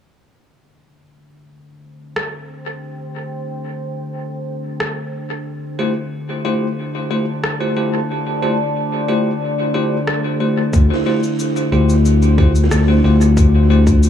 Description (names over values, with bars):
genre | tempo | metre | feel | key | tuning
ambient dub | 91 BPM | 4/4 | straight | D minor | A4 = 440 Hz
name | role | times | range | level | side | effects
deep dark ambient pad | sustained chords | 1.6-14.1 s | D4 to A5 | -23 LUFS | left 1 dB | chorus, built-in reverb
electronic rim click and cabasa | drums | 2.2-14.1 s | none | -26 LUFS | equal | dub echo
bell-like tine electric piano | stabs | 5.8-13.8 s | A3 to C5 | -20 LUFS | left 1 dB | medium stereo tremolo, dub echo
fingered electric bass | bass | 10.7-14.1 s | D2 | -12 LUFS | left 1 dB | none
electronic kick drum | drums | 10.7-14.0 s | none | -14 LUFS | equal | none
buzzing kalimba | arpeggios | 10.9-14.1 s | E4 to F4 | -24 LUFS | right 7 dB | tape echo
room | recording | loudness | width
light reverb, digital ambience | echo-heavy mix | -15 LUFS | side -9 dB against mid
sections
0.2-10.7 A section; 10.7-14.1 B section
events
none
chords
0.2 Dm11